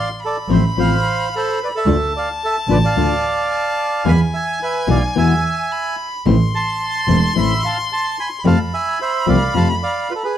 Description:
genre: tango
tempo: 109 BPM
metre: 4/4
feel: rubato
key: unclear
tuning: A4 = 440 Hz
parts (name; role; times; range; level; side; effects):
- bandoneon; melody; 0.0-10.4 s; F4 to C6; -20 LUFS; right 3 dB; slapback echo
- rich violin; second line; 0.0-10.4 s; G#5 to C6; -24 LUFS; left 2 dB; none
- nylon-string guitar; accompaniment; 0.5-9.7 s; B2 to F4; -18 LUFS; left 8 dB; none
- clear double bass; bass; 0.5-9.8 s; E1 to F2; -18 LUFS; right 2 dB; none
room: little or no reverb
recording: dry, close 1970s-style studio recording, faint mains hum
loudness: -15 LUFS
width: side -10 dB against mid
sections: 0.0-10.4 A section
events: none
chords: 0.0 F/A; 1.9 Dm; 4.1 E; 6.3 Am; 8.5 F

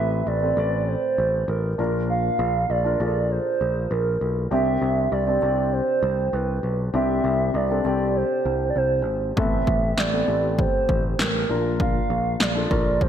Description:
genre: piano-driven pop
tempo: 99 BPM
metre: 4/4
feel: straight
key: unclear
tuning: A4 = 440 Hz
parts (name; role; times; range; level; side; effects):
- hollow clarinet-like synth lead; melody; 0.0-13.1 s; Bb4 to F5; -24 LUFS; right 4 dB; chorus
- dark concert grand piano; accompaniment; 0.0-13.1 s; A2 to D5; -27 LUFS; left 4 dB; none
- picked electric bass; bass; 0.0-13.1 s; G#1 to C2; -26 LUFS; equal; none
- house drum kit; drums; 9.4-13.1 s; handclaps, kick drum, snare drum; -24 LUFS; equal; gated reverb
room: moderate lush hall reverb, RT60 1.6 s, digital ambience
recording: bright 1980s-style digital production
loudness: -20 LUFS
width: side -9 dB against mid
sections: 0.0-13.1 A section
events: none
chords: 0.0 Amadd9; 1.8 Bb; 4.5 Csus2; 9.4 Amadd9; 11.5 Bb

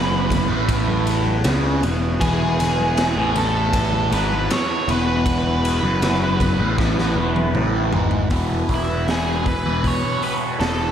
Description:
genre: psychedelic rock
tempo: 79 BPM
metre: 4/4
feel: straight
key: E major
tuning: A4 = 439 Hz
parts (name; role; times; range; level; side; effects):
- octave-fuzz lead guitar; melody; 0.0-10.9 s; E4 to C#5; -25 LUFS; right 1 dB; distortion, diffuse ambient delay
- tonewheel organ; sustained chords; 0.0-10.9 s; E3 to B5; -29 LUFS; right 4 dB; slow rotary speaker, overdrive, chorus vibrato
- fuzz guitar; riff; 0.0-10.9 s; E2 to E3; -23 LUFS; equal; distortion, phaser
- fuzz picked electric bass; bass; 0.0-10.9 s; E1 to C#2; -23 LUFS; equal; overdrive
- tanpura; drone; 0.0-10.9 s; E2 to E3; -34 LUFS; right 1 dB; none
- raw garage drum kit; drums; 0.3-10.8 s; hi-hat, kick drum, ride cymbal, snare drum, toms; -24 LUFS; equal; none
- congas; percussion; 0.3-8.1 s; none; -34 LUFS; left 2 dB; none
room: moderate huge ambient reverb, RT60 4.1 s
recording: dreamy mix soaked in reverb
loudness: -17 LUFS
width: side -9 dB against mid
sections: 0.0-8.3 A section; 8.3-10.9 B section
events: drum fill 6.8-8.3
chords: 0.0 E

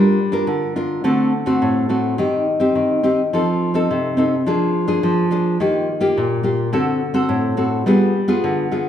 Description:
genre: samba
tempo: 106 BPM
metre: 4/4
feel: straight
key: G minor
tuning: A4 = 440 Hz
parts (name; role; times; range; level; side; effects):
- nylon-string guitar; solo; 0.0-8.9 s; A2 to Bb4; -16 LUFS; equal; none
room: wet large studio reverb, RT60 1.3 s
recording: minimal, uncompressed stereo recording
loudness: -16 LUFS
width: side -10 dB against mid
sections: 0.0-8.9 A section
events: none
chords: 0.0 Gm7; 1.1 D7; 2.2 Cm/Eb; 3.3 F7; 4.5 Bb7/F; 5.6 Ebadd9; 6.7 D7; 7.9 G7b9

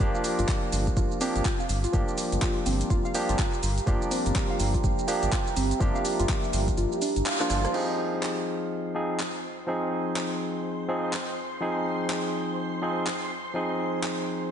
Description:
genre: deep house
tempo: 124 BPM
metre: 4/4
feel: swing 61% on 16ths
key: F dorian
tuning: A4 = 440 Hz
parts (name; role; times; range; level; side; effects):
- deep dark ambient pad; sustained chords; 1.7-14.5 s; F4 to Bb5; -36 LUFS; right 4 dB; chorus, built-in reverb, sidechain pumping
- warbly dusty pluck; arpeggios; 0.0-7.7 s; C4 to F5; -33 LUFS; left 1 dB; analog chorus, cassette tape, sidechain pumping, ping-pong delay
- barky tine electric piano; stabs; 0.0-14.5 s; F3 to Ab4; -29 LUFS; equal; overdrive, sidechain pumping, low-pass filter, diffuse ambient delay
- round analog bass; bass; 0.0-7.7 s; G1; -28 LUFS; equal; sidechain pumping
- deep house drum kit; drums; 0.0-14.2 s; crash cymbal, handclaps, hi-hat, rim click, shaker; -33 LUFS; equal; none
- electronic kick drum; drums; 0.0-6.8 s; none; -27 LUFS; equal; none
- soft string machine; texture; 8.8-14.5 s; C5 to C6; -38 LUFS; equal; ensemble chorus, sidechain pumping
room: moderate lush hall reverb, RT60 1.8 s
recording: dreamy mix soaked in reverb, nothing above 10.3 kHz, faint mains hum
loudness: -25 LUFS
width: side -8 dB against mid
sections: 0.0-7.7 A section; 7.7-14.5 B section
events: kick drops out 6.8-7.7; band accent 7.3; drum fill 7.5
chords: 0.0 Gm7; 7.7 Fm7

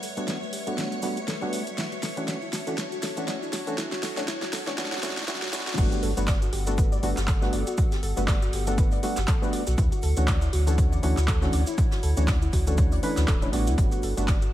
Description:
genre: deep house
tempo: 120 BPM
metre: 4/4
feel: swing 57% on 16ths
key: G lydian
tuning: A4 = 439 Hz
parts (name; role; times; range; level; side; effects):
- warbly tape-like pad; sustained chords; 0.0-14.5 s; G3 to A5; -38 LUFS; equal; chorus, built-in reverb, sidechain pumping
- warbly dusty pluck; arpeggios; 0.0-14.5 s; E4 to D5; -35 LUFS; left 2 dB; chorus, sidechain pumping, ping-pong delay
- deep house drum kit; drums; 0.0-14.5 s; crash cymbal, handclaps, hi-hat, snare drum; -33 LUFS; equal; overdrive
- cabasa; percussion; 0.0-14.5 s; none; -41 LUFS; right 3 dB; none
- string machine, violins; texture; 0.0-5.8 s; C#5 to C#6; -40 LUFS; equal; ensemble chorus
- percussive organ stab; stabs; 0.2-14.4 s; E3 to B4; -31 LUFS; equal; lush chorus, sidechain pumping, ping-pong delay
- warm sub bass; bass; 5.8-14.5 s; D1 to D2; -25 LUFS; equal; sidechain pumping
- electronic kick drum; drums; 5.8-14.4 s; none; -24 LUFS; equal; none
- jazz brush drum kit; drums; 5.8-14.4 s; hi-hat, shaker, snare drum; -42 LUFS; equal; none
room: light reverb, small room ambience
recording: vinyl crackle, high-pass filter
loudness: -23 LUFS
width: side -14 dB against mid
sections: 0.0-5.8 A section; 5.8-14.5 B section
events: build-up 0.0-5.8; drum fill 0.0-5.8; filter sweep on synth pluck 0.0-5.8; filter sweep 0.0-5.8; drop 5.8-14.5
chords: 0.0 Gmaj9; 1.8 Dmaj9; 5.8 Gmaj9; 9.8 Dmaj9; 13.8 Gmaj9

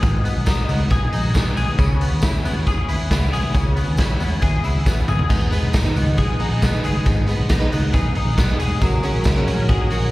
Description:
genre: jangly indie pop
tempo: 137 BPM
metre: 4/4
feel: straight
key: G# minor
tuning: A4 = 439 Hz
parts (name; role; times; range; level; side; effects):
- direct-recorded clean electric guitar; arpeggios; 0.0-10.1 s; G#2 to G#4; -25 LUFS; left 2 dB; ensemble chorus, slapback echo
- vintage muted picked electric bass; bass; 0.0-10.1 s; E1 to E2; -21 LUFS; equal; none
- raw garage drum kit; drums; 0.0-10.0 s; crash cymbal, hi-hat, kick drum, snare drum, toms; -20 LUFS; equal; none
- tambourine; percussion; 0.0-10.0 s; none; -40 LUFS; right 2 dB; none
- picked plugged-in steel-string acoustic guitar; accompaniment; 5.3-10.1 s; G#2 to B4; -26 LUFS; right 3 dB; slapback echo
room: little or no reverb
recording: live gig heard through the venue's PA, recital hall reverb, vinyl crackle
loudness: -16 LUFS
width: side -18 dB against mid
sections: 0.0-10.1 A section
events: drum fill 4.9-5.3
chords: 0.0 G#m; 1.8 C#m7; 5.3 G#m; 8.8 F#add9

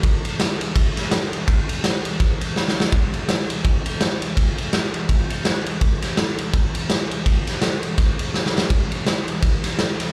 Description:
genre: rock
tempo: 166 BPM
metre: 4/4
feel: swing 58% on 8ths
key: none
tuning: none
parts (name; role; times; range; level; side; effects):
- raw garage drum kit; drums; 0.0-10.1 s; kick drum, ride cymbal, snare drum, splash cymbal; -21 LUFS; equal; none
room: light reverb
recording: live gig heard through the venue's PA, club reverb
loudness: -21 LUFS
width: mono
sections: 0.0-2.9 A section; 2.9-10.1 B section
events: drum fill 2.6-2.9, 8.3-8.7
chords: none

